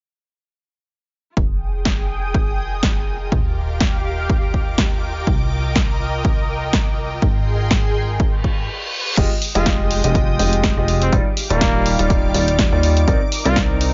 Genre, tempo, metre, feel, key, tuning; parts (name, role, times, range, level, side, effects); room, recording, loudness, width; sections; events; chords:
piano house; 123 BPM; 4/4; swing 55% on 16ths; F dorian; A4 = 438 Hz
analog string pad; sustained chords; 1.6-13.9 s; Ab3 to Eb6; -30 LUFS; equal; ensemble chorus, phaser, sidechain pumping
plucky analog bass; bass; 1.4-13.9 s; Eb1 to Eb2; -24 LUFS; equal; sidechain pumping
electronic kick drum; drums; 1.4-13.7 s; -22 LUFS; equal; small room ambience
clear studio string section; texture; 1.4-8.7 s; F4 to G5; -34 LUFS; equal; sidechain pumping
house drum kit; drums; 1.9-13.9 s; crash cymbal, hi-hat, snare drum; -25 LUFS; equal; small room ambience
reverse cymbal; sound effects; 8.4-9.2 s; -27 LUFS; equal
clear concert grand piano; riff; 9.2-13.9 s; G3 to Eb5; -23 LUFS; equal; sidechain pumping, low-pass filter, digital delay
clear trumpet; melody; 9.6-13.6 s; Bb3 to F4; -27 LUFS; equal; vintage 12-bit sampler grit, digital delay
little or no reverb; nothing above 7.5 kHz; -18 LUFS; mono
1.4-9.2 A section; 9.2-13.9 B section
fade-in on string section 1.4-9.2; filter sweep on analog synth bass 1.4-9.2; reverse cymbal 8.4-9.2; stop 8.7-9.2
1.4 Fm9; 3.3 Ebmaj9; 5.3 Cm9; 7.2 Abmaj7; 9.2 Fm9; 11.1 Ebmaj9; 13.1 Cm9